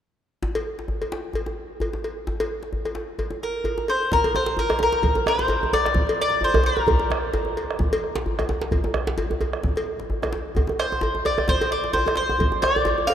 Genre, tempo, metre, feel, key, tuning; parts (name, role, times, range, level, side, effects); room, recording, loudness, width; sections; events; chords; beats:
west african traditional, West African drum ensemble; 130 BPM; 4/4; swing 55% on 16ths; Bb major pentatonic; A4 = 440 Hz
djembe; percussion; 0.4-13.1 s; -30 LUFS; left 1 dB
cowbell; percussion; 0.6-13.1 s; -29 LUFS; left 1 dB
mandolin; melody; 3.4-7.5, 10.8-13.1 s; Bb4 to F5; -22 LUFS; left 1 dB
bombo; percussion; 4.1-12.8 s; -28 LUFS; right 2 dB
djembe; percussion; 4.2-12.9 s; -27 LUFS; right 1 dB
wet cathedral reverb, RT60 5.3 s; in a vast, echoing space; -21 LUFS; side -9 dB against mid
0.4-4.1 A section; 4.1-13.1 B section
| 0.42 0.88 1.34 1.80 | 2.27 2.73 3.19 3.65 | 4.11 4.57 5.04 5.50 | 5.96 6.42 6.88 7.34 | 7.80 8.26 8.72 9.18 | 9.64 10.10 10.56 11.03 | 11.48 11.95 12.40 12.87